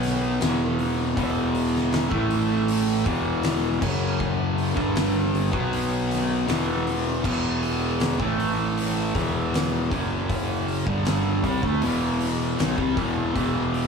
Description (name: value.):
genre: stoner and doom metal.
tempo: 79 BPM.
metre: 4/4.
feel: straight.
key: E minor.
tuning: A4 = 440 Hz.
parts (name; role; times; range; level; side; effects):
fuzz guitar; riff; 0.0-13.9 s; E2 to B3; -23 LUFS; equal; distortion.
fuzz fingered electric bass; bass; 0.0-13.9 s; E1 to D2; -29 LUFS; equal; overdrive.
oversized low-tuned drum kit; drums; 0.0-13.9 s; crash cymbal, hi-hat, kick drum, snare drum; -29 LUFS; left 1 dB; none.
room: light reverb, small room ambience.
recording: none.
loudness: -21 LUFS.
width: side -5 dB against mid.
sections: 0.0-13.9 A section.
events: none.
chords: 0.4 E5; 2.1 A5; 3.1 E5; 3.8 F#5; 4.8 G5; 5.5 B5; 6.5 E5; 8.2 A5; 9.1 E5; 9.9 F#5; 10.9 Em.